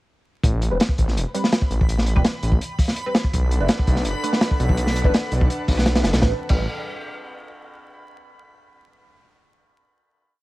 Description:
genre	drum and bass, jungle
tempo	166 BPM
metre	4/4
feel	straight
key	A dorian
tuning	A4 = 444 Hz
part	detuned saw bass	bass	0.4-6.7 s	E1 to B1	-21 LUFS	equal	none
part	crunchy breakbeat drum kit	drums	0.4-6.6 s	crash cymbal, hi-hat, kick drum, snare drum	-20 LUFS	equal	none
part	backwards swelling texture	texture	1.3-6.2 s	B5	-36 LUFS	equal	built-in reverb
part	filtered dub chord stab	stabs	0.7-6.6 s	G3 to B4	-29 LUFS	right 1 dB	phaser, wide subtle chorus, dub echo
part	airy breathy pad	sustained chords	3.3-6.4 s	C4 to G5	-31 LUFS	equal	chorus, vintage 12-bit sampler grit
room	small room reverb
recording	vinyl crackle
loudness	-18 LUFS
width	side -19 dB against mid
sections	0.4-6.2 drop; 6.2-7.7 final chord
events	drop 0.4-6.2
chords	0.4 Am9; 3.3 Bm7; 6.2 Am9

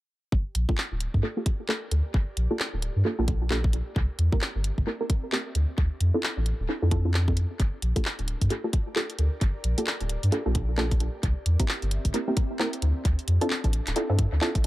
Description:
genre	UK garage, two-step garage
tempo	132 BPM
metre	4/4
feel	swing 60% on 16ths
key	G dorian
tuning	A4 = 440 Hz
part	soft dub sub bass	bass	0.3-14.7 s	D1 to G2	-25 LUFS	equal	none
part	electronic kick drum	drums	0.3-14.6 s	none	-25 LUFS	equal	none
part	ethereal airy pad	texture	1.1-14.7 s	C4 to E5	-42 LUFS	right 1 dB	ensemble chorus, built-in reverb, sidechain pumping
part	garage drum kit	drums	0.6-14.7 s	handclaps, hi-hat	-31 LUFS	equal	analog delay
part	punchy chord stab	stabs	0.7-14.5 s	Bb3 to Bb4	-30 LUFS	equal	chorus, cassette tape, tape echo
room	little or no reverb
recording	echo-heavy mix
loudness	-24 LUFS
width	side -17 dB against mid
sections	0.3-14.7 A section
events	fade-in on ambient pad 0.3-14.7; filter sweep on synth stab 0.3-14.7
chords	0.3 Gm9; 4.0 C7; 5.6 Dm9; 7.6 Gm9; 11.2 C7; 12.8 Dm9

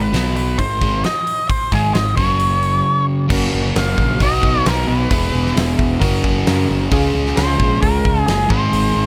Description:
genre	classic rock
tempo	133 BPM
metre	4/4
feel	straight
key	unclear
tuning	A4 = 444 Hz
part	octave-fuzz lead guitar	melody	0.0-9.1 s	Ab4 to F5	-22 LUFS	equal	distortion
part	crunchy overdriven guitar	riff	0.0-9.1 s	E2 to G#4	-22 LUFS	equal	none
part	fuzz picked electric bass	bass	0.0-9.1 s	E1 to Gb2	-22 LUFS	equal	overdrive
part	huge arena drum kit	drums	0.1-8.8 s	crash cymbal, hi-hat, kick drum, snare drum	-23 LUFS	equal	none
part	bright reed electric piano	accompaniment	3.3-9.0 s	C4 to Bb5	-28 LUFS	equal	fast tremolo
room	light reverb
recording	none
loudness	-17 LUFS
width	mono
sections	0.0-3.3 A section; 3.3-9.1 B section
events	reed electric piano fill 5.6-6.9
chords	0.1 B5; 0.6 Ab; 2.2 Gb5; 3.3 Gb; 4.2 B; 5.1 E; 6.0 Gb; 6.9 Db; 8.5 Ab

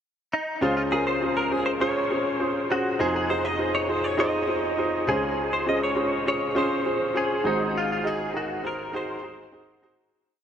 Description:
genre	pop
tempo	101 BPM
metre	4/4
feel	straight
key	Db major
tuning	A4 = 442 Hz
part	direct-recorded clean electric guitar	melody	0.3-9.5 s	Eb4 to Eb5	-27 LUFS	left 1 dB	ensemble chorus
part	warm grand piano	accompaniment	0.6-10.2 s	F1 to Eb5	-25 LUFS	equal	none
room	wet huge ambient reverb, RT60 7.5 s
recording	dreamy mix soaked in reverb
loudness	-23 LUFS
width	side -8 dB against mid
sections	0.0-0.6 pickup bar; 0.6-10.1 verse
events	fade-out 7.8-10.1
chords	0.0 N.C.; 0.6 Dbmaj7; 3.0 Fm7; 5.1 Dbmaj7; 7.5 Ab7

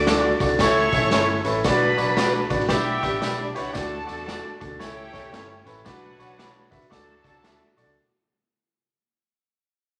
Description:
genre	uptempo 1960s-style soul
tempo	114 BPM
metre	4/4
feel	swing 64% on 8ths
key	D major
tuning	A4 = 440 Hz
part	edgy saxophone section	second line	0.0-7.8 s	F#3 to E5	-32 LUFS	equal	none
part	warm symphonic string section	second line	0.0-7.8 s	D4 to D6	-32 LUFS	equal	none
part	vintage muted picked electric bass	bass	0.0-7.9 s	G1 to E2	-35 LUFS	equal	none
part	clear baby grand piano	accompaniment	0.1-7.9 s	C#4 to E5	-26 LUFS	equal	none
part	electric guitar through a small old amp	stabs	0.1-7.6 s	C#4 to D5	-31 LUFS	equal	none
part	raw garage drum kit	drums	0.1-7.9 s	hi-hat, kick drum, snare drum	-30 LUFS	equal	none
part	tambourine	percussion	0.1-7.9 s	none	-39 LUFS	equal	none
room	wet large studio reverb, RT60 0.9 s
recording	none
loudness	-22 LUFS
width	mono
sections	0.0-8.0 A section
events	fade-out 0.0-8.0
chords	0.0 D; 0.6 A; 1.7 Bm; 2.7 G; 3.8 D; 4.8 A/C#; 5.9 Bm; 6.9 D

